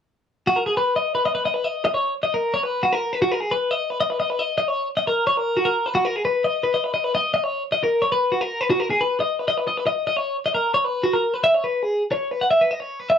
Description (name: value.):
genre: rock.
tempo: 306 BPM (eighths).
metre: 7/8.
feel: straight.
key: B major.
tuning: A4 = 440 Hz.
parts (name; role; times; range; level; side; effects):
twelve-string electric guitar; solo; 0.5-13.2 s; F#4 to F#5; -19 LUFS; left 1 dB; none.
room: wet studio reverb, RT60 0.6 s.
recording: none.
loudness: -19 LUFS.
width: side -8 dB against mid.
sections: 0.5-11.4 A section; 11.4-13.2 B section.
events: none.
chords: none.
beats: | 0.47 0.67 0.86 1.06 1.25 1.45 1.65 | 1.84 2.04 2.23 2.43 2.62 2.82 3.02 | 3.21 3.41 3.60 3.80 4.00 4.19 4.39 | 4.58 4.78 4.97 5.17 5.37 5.56 5.76 | 5.95 6.15 6.35 6.54 6.74 6.93 7.13 | 7.33 7.52 7.72 7.91 8.11 8.31 8.50 | 8.70 8.89 9.09 9.29 9.48 9.68 9.87 | 10.07 10.27 10.46 10.66 10.85 11.05 11.24 | 11.44 11.64 11.83 12.03 12.22 12.42 12.61 | 12.81 13.01.